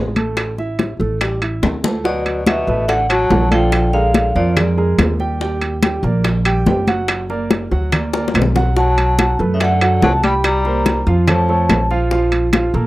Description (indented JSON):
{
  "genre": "Afro-Cuban jazz",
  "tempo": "143 BPM",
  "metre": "4/4",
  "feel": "straight",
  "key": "unclear",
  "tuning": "A4 = 439 Hz",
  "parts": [
    { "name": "warm baby grand piano", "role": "accompaniment", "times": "0.0-12.9 s", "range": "F3 to G5", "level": "-21 LUFS", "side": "right 2 dB", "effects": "none" },
    { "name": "upright bass", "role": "bass", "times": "0.0-12.9 s", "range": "F#1 to Bb2", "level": "-18 LUFS", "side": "equal", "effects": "none" },
    { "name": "congas", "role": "percussion", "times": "0.2-12.7 s", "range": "none", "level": "-20 LUFS", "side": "left 1 dB", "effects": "none" },
    { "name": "timbales", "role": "percussion", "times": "0.2-12.7 s", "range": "none", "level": "-22 LUFS", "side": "right 3 dB", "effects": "none" },
    { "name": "bongos", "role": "percussion", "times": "0.4-12.9 s", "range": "none", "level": "-24 LUFS", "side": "left 5 dB", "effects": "none" },
    { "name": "claves", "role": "percussion", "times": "0.4-12.7 s", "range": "none", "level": "-27 LUFS", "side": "left 6 dB", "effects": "none" },
    { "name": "warm tenor saxophone", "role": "second line", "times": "2.0-4.7, 8.8-11.9 s", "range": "Bb2 to G3", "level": "-22 LUFS", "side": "left 3 dB", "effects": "none" },
    { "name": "vibraphone with medium hard mallets", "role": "melody", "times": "2.1-4.8, 8.8-11.9 s", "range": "D5 to B5", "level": "-19 LUFS", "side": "equal", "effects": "none" }
  ],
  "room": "light reverb",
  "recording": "dry, close 1970s-style studio recording",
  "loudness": "-14 LUFS",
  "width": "side -17 dB against mid",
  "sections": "0.0-2.1 A section; 2.1-12.9 B section",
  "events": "drum fill 1.6-2.1, 8.1-8.8",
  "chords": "0.0 A5; 2.1 D69; 3.7 Bb7; 5.4 Ebmaj7; 7.1 F#aug; 8.8 Bm7; 10.4 C5; 11.3 Faug; 12.1 Bb5"
}